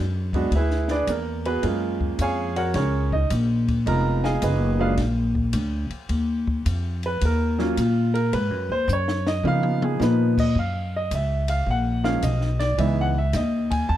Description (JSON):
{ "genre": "jazz piano trio", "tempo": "108 BPM", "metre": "4/4", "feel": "swing 67% on 8ths", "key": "Eb minor, F# major from 10.6 s", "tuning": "A4 = 439 Hz", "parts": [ { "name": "upright bass", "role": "bass", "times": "0.0-14.0 s", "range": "F1 to Db3", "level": "-23 LUFS", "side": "left 1 dB", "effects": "none" }, { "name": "warm baby grand piano", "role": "melody", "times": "0.3-14.0 s", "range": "E3 to Bb5", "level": "-25 LUFS", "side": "right 3 dB", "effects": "none" }, { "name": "compact cocktail drum kit", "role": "drums", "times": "0.3-14.0 s", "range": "crash cymbal, hi-hat, kick drum, ride cymbal, snare drum, toms", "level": "-32 LUFS", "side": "left 2 dB", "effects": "none" } ], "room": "light reverb", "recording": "dark, warm production", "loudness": "-20 LUFS", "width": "side -12 dB against mid", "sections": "0.0-10.6 A section; 10.6-14.0 A section", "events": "grand piano solo 0.0-14.0; drum fill 8.9-10.0", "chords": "0.0 E9; 1.6 Gbmaj9; 3.9 Fm7b5; 5.0 Bb; 6.1 Ebsus2; 8.3 Ab5; 9.4 Db13; 10.6 F#maj7; 12.8 C#m7" }